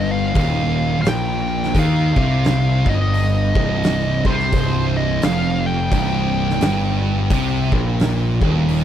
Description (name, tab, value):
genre	stoner and doom metal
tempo	86 BPM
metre	4/4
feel	swing 60% on 8ths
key	C minor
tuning	A4 = 440 Hz
part	fuzz lead guitar	melody	0.0-8.8 s	C5 to G5	-24 LUFS	equal	wah, distortion, tape echo
part	heavy high-gain guitar	riff	0.0-8.8 s	C2 to Eb3	-28 LUFS	equal	distortion
part	thick fuzz guitar	riff	0.0-8.8 s	C2 to Eb3	-23 LUFS	left 7 dB	distortion
part	thick fuzz guitar	riff	0.0-8.8 s	C2 to Eb3	-22 LUFS	right 7 dB	distortion
part	fuzz picked electric bass	bass	0.0-8.8 s	C1 to Eb2	-22 LUFS	equal	overdrive, tube saturation
part	oversized low-tuned drum kit	drums	0.4-8.8 s	hi-hat, kick drum, snare drum	-23 LUFS	equal	none
room	little or no reverb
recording	none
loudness	-16 LUFS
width	side -10 dB against mid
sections	0.0-8.8 A section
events	none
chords	0.0 Eb5; 4.5 Cm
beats	0.36 1.06 | 1.75 2.45 3.14 3.83 | 4.53 5.22 5.92 6.62 | 7.31 8.01 8.70